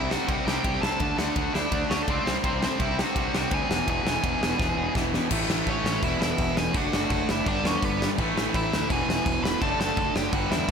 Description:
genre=punk rock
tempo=167 BPM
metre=4/4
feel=straight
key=unclear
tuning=A4 = 440 Hz
part: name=nasal lead guitar with a parked wah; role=melody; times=0.0-10.7 s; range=B3 to B5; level=-30 LUFS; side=equal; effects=overdrive, tape echo
part: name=cranked stack guitar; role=riff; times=0.0-10.7 s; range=E2 to D4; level=-27 LUFS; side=equal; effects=overdrive
part: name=growling picked electric bass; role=bass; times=0.0-10.7 s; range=E1 to E2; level=-33 LUFS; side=equal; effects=overdrive
part: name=big rock drum kit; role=drums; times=0.1-10.7 s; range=crash cymbal, kick drum, ride cymbal, snare drum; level=-28 LUFS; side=equal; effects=none
room=little or no reverb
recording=none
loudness=-23 LUFS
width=side -6 dB against mid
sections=0.0-5.3 A section; 5.3-10.7 B section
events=drum fill 4.6-5.3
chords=0.0 C; 1.0 D; 2.3 C; 3.7 E; 5.3 A; 6.0 E; 6.7 D/F#; 7.5 G; 8.2 A5; 8.9 E; 9.6 D/F#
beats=0.29 0.65 | 1.01 1.37 1.73 2.08 | 2.44 2.80 3.16 3.52 | 3.88 4.24 4.60 4.95 | 5.31 5.67 6.03 6.39 | 6.75 7.11 7.46 7.82 | 8.18 8.54 8.90 9.25 | 9.61 9.97 10.33 10.68

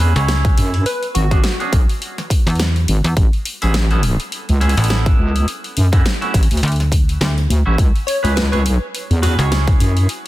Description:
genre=glitch hop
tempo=104 BPM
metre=4/4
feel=swing 57% on 16ths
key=C# phrygian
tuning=A4 = 439 Hz
part: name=clean electric guitar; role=stabs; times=0.0-10.1 s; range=A3 to C#5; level=-24 LUFS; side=right 2 dB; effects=sidechain pumping, tape echo
part: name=wobble bass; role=bass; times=0.0-10.1 s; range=G#1 to F#2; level=-15 LUFS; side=equal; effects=chorus
part: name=dubstep drum kit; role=drums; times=0.0-10.2 s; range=hi-hat, snare drum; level=-24 LUFS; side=left 1 dB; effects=none
part: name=slap-like FM bass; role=bass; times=0.2-9.8 s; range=A1 to E2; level=-16 LUFS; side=equal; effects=none
part: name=electronic kick drum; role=drums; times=0.4-9.8 s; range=none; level=-15 LUFS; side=equal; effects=none
part: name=plucky unison lead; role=melody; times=0.9-1.6, 8.1-9.5 s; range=F#4 to C#5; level=-24 LUFS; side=left 1 dB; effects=tape echo
room=little or no reverb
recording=dense, heavily limited modern master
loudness=-14 LUFS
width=side -16 dB against mid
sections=0.0-10.3 A section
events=none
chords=0.0 C#m7; 0.9 E13; 3.2 Aadd9; 5.5 Dmaj9; 7.8 C#m7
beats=0.28 | 0.86 1.44 2.01 2.59 | 3.17 3.74 4.32 4.90 | 5.47 6.05 6.63 7.21 | 7.78 8.36 8.94 9.51 | 10.09

